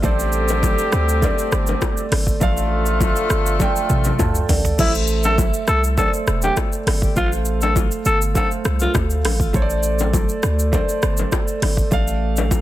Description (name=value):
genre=afrobeats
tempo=101 BPM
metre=4/4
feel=straight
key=A minor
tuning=A4 = 441 Hz
part: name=dark horn section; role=second line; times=0.0-4.5 s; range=D3 to G4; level=-23 LUFS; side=left 2 dB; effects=none
part: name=dark concert grand piano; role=accompaniment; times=0.0-12.6 s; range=A3 to A5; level=-24 LUFS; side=right 3 dB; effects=none
part: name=hard-hitting 808-style bass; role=bass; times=0.0-12.6 s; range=E1 to D2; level=-20 LUFS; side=equal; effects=none
part: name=afro-pop drum kit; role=drums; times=0.0-12.6 s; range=crash cymbal, hi-hat, kick drum, rim click, shaker, toms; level=-21 LUFS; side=equal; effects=overdrive
part: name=congas and bongos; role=percussion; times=0.0-12.6 s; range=none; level=-27 LUFS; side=left 7 dB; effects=none
part: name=growling alto saxophone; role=melody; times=4.8-8.9 s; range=E4 to A4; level=-23 LUFS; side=left 1 dB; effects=ping-pong delay
room=light reverb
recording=dense, heavily limited modern master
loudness=-16 LUFS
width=side -14 dB against mid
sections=0.0-4.8 A section; 4.8-12.6 A section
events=drum fill 3.6-4.8; grand piano fill 3.9-4.8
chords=0.0 Csus2/A; 2.4 Dm; 4.8 Am; 7.2 F; 9.5 Csus2/A; 11.9 Dm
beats=| 0.04 0.63 1.23 1.82 | 2.41 3.01 3.60 4.20 | 4.79 5.38 5.98 6.57 | 7.17 7.76 8.35 8.95 | 9.54 10.14 10.73 11.32 | 11.92 12.51